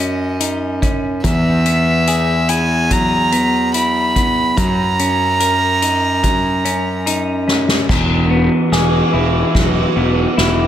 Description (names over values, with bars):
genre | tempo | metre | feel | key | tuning
post-rock | 72 BPM | 4/4 | straight | E lydian | A4 = 440 Hz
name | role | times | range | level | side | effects
rich violin | melody | 0.0-7.1 s | D#5 to B5 | -17 LUFS | right 2 dB | digital delay
semi-hollow electric guitar | arpeggios | 0.0-10.7 s | E2 to A#4 | -19 LUFS | left 1 dB | digital delay
fuzz picked electric bass | bass | 0.0-10.7 s | E1 to F#2 | -19 LUFS | equal | overdrive
soft-mallet drum kit | drums | 0.4-10.6 s | crash cymbal, hi-hat, kick drum, ride cymbal, snare drum | -18 LUFS | equal | none
room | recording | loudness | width
wet concert hall reverb, RT60 1.8 s, small room ambience | big arena sound | -13 LUFS | side -10 dB against mid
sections
0.0-7.9 A section; 7.9-10.7 B section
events
drum fill 7.5-7.9, 7.9-10.7; build-up 7.9-10.7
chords
0.0 F#6; 1.2 Eadd9; 4.6 F#6; 7.9 Eadd9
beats
0.41 | 1.24 2.08 2.91 3.74 | 4.57 5.41 6.24 7.07 | 7.89 8.72 9.55 10.38